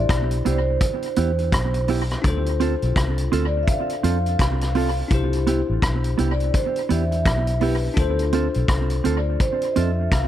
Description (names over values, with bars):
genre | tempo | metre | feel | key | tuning
lovers rock reggae | 84 BPM | 4/4 | swing 62% on 16ths | C major | A4 = 440 Hz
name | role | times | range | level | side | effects
vibraphone with soft mallets | melody | 0.0-10.3 s | C5 to F5 | -27 LUFS | right 2 dB | tape echo
bell-like tine electric piano | accompaniment | 0.0-10.3 s | D4 to C5 | -29 LUFS | left 6 dB | lush chorus
vintage muted fingered electric bass | bass | 0.0-10.3 s | A1 to F2 | -22 LUFS | equal | none
vintage drum kit | drums | 0.1-10.3 s | hi-hat, kick drum, rim click | -24 LUFS | equal | tape echo
mellow electric guitar | stabs | 0.5-9.9 s | B3 to A4 | -26 LUFS | right 8 dB | tape echo
room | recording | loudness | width
light reverb | dark, warm production | -19 LUFS | side -12 dB against mid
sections
0.0-10.3 A section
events
none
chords
0.0 Cmaj7; 2.2 Dm7; 5.1 Cmaj7; 8.0 Dm7